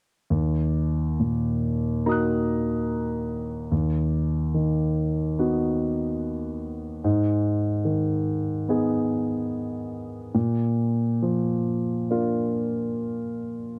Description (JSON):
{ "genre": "neoclassical minimalist piano", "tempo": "72 BPM", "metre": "4/4", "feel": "uneven beats, rubato", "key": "Eb harmonic minor", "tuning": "A4 = 439 Hz", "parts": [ { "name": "warm concert grand piano", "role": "solo", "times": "0.3-13.8 s", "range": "Eb2 to Gb6", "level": "-25 LUFS", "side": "equal", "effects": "none" } ], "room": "light reverb", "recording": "dry, close 1970s-style studio recording", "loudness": "-25 LUFS", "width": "mono", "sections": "0.3-13.8 A section", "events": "none", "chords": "0.3 Ebm; 3.7 B/D#; 7.0 Abm; 10.3 Bb" }